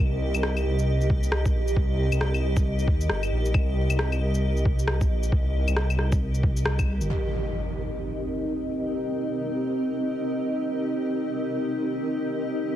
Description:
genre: future garage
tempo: 135 BPM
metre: 4/4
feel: swing 61% on 16ths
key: C minor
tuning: A4 = 440 Hz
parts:
  - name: granular cloud pad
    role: sustained chords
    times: 0.0-12.8 s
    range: C4 to Eb5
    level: -28 LUFS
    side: equal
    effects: built-in reverb, sidechain pumping
  - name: dark detuned saw bass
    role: bass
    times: 0.0-7.1 s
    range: G1 to Eb2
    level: -24 LUFS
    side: equal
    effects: sidechain pumping
  - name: electronic shaker, claves and rim click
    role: drums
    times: 0.3-7.1 s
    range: none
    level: -30 LUFS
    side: left 1 dB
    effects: none
  - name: electronic kick drum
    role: drums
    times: 1.1-6.9 s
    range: none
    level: -24 LUFS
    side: equal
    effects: overdrive
  - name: impact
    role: sound effects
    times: 7.1-8.9 s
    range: none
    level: -32 LUFS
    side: equal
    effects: none
room: moderate recital hall reverb, RT60 1.6 s, digital ambience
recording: heavily compressed radio sound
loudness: -23 LUFS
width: side -12 dB against mid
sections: 0.0-7.1 A section; 7.1-12.8 B section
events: band accent 6.7; impact 7.1-8.9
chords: 0.0 Cm7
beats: 0.43 0.88 1.32 | 1.76 2.21 2.65 3.10 | 3.54 3.99 4.43 4.88 | 5.32 5.76 6.21 6.65 | 7.10 7.54 7.99 8.43 | 8.88 9.32 9.77 10.21 | 10.65 11.10 11.54 11.99 | 12.43

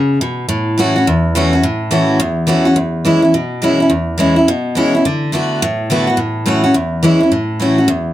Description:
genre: rock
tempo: 211 BPM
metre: 4/4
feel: swing 63% on 8ths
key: A major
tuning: A4 = 440 Hz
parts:
  - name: picked steel-string acoustic guitar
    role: solo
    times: 0.0-8.1 s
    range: E2 to F#4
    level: -12 LUFS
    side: equal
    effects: none
room: moderate small room reverb, RT60 0.6 s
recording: none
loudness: -12 LUFS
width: side -13 dB against mid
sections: 0.0-7.3 A section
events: none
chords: 0.5 A6; 2.8 E6; 5.0 D6; 6.2 A6; 6.8 E6; 7.3 A6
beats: 0.21 | 0.49 0.78 1.06 1.35 | 1.64 1.92 2.20 2.49 | 2.77 3.06 3.34 3.63 | 3.91 4.19 4.48 4.76 | 5.05 5.33 5.61 5.90 | 6.18 6.47 6.75 7.04 | 7.32 7.60 7.89

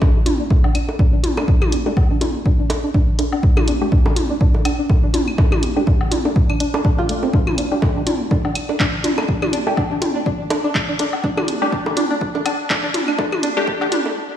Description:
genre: minimal techno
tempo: 123 BPM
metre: 4/4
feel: swing 56% on 16ths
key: unclear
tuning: A4 = 440 Hz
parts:
  - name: string-like resonator pluck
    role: riff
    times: 0.0-14.0 s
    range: A3 to F4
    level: -23 LUFS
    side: right 1 dB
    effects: chorus, sidechain pumping, ping-pong delay
  - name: electronic kick drum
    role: drums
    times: 0.0-13.8 s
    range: none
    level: -17 LUFS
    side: equal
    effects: none
  - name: electronic bongos, toms, woodblock and claves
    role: percussion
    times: 0.0-14.1 s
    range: none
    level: -23 LUFS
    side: left 1 dB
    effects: ping-pong delay
  - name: punchy analog drum machine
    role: drums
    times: 0.3-14.0 s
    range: handclaps, hi-hat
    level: -26 LUFS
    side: equal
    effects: none
  - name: filtered dub chord stab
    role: stabs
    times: 1.9-13.6 s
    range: A3 to G4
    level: -25 LUFS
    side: left 1 dB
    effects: phaser, ping-pong delay
room: moderate lush hall reverb, RT60 1.9 s, digital ambience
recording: played on a big sound system in a bare room, stone room reverb, high-pass filter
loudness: -16 LUFS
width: side -10 dB against mid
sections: 0.0-14.4 A section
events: build-up 0.0-14.4; filter sweep on synth pluck 0.0-14.4; filter sweep on synth stab 0.0-14.4; filter sweep 0.0-14.4; break 14.2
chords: none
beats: 0.02 0.51 0.99 | 1.48 1.97 2.46 2.94 | 3.43 3.92 4.41 4.89 | 5.38 5.87 6.36 6.85 | 7.33 7.82 8.31 8.80 | 9.29 9.77 10.26 10.75 | 11.24 11.72 12.21 12.70 | 13.19 13.68

